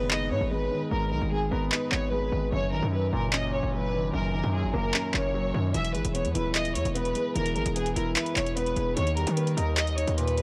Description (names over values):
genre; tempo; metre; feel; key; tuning
hip hop, trap; 149 BPM; 4/4; half-time; G# minor; A4 = 440 Hz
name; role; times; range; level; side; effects
warm studio violin section; melody; 0.0-10.4 s; G#4 to E5; -33 LUFS; equal; low-pass filter, tape echo
dark baby grand piano; accompaniment; 0.0-10.4 s; F#2 to E5; -33 LUFS; equal; low-pass filter
distorted 808-style bass; bass; 0.0-10.4 s; D#1 to D#3; -32 LUFS; equal; distortion
booming analog drum machine; drums; 0.1-10.4 s; handclaps, hi-hat; -32 LUFS; equal; none
room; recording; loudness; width
little or no reverb; dry, gritty hardware recording, transformer saturation, cassette tape; -27 LUFS; mono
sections
0.0-10.4 A section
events
break 0.0-5.7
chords
0.0 G#m; 2.5 F#6; 5.7 E; 9.0 D#